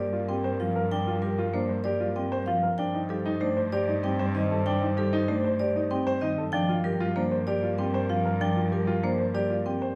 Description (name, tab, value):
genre	classical, minimalist pattern music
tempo	192 BPM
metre	6/4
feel	straight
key	G minor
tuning	A4 = 441 Hz
part	vibraphone with medium hard mallets	melody	0.0-9.9 s	A4 to G5	-33 LUFS	equal	none
part	dark French horn	second line	0.0-10.0 s	Bb4 to C5	-38 LUFS	equal	none
part	dark baby grand piano	arpeggios	0.0-10.0 s	D4 to C5	-34 LUFS	equal	none
part	rich cello	bass	0.0-10.0 s	G2	-34 LUFS	equal	none
part	marimba with medium hard mallets	accompaniment	0.3-9.9 s	Eb3 to C4	-33 LUFS	equal	none
room	moderate recital hall reverb, RT60 1.7 s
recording	recorded in a church or concert hall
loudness	-27 LUFS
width	mono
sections	0.0-10.0 A section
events	none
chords	0.0 Gm7; 2.8 Am7b5/G; 6.5 Gm7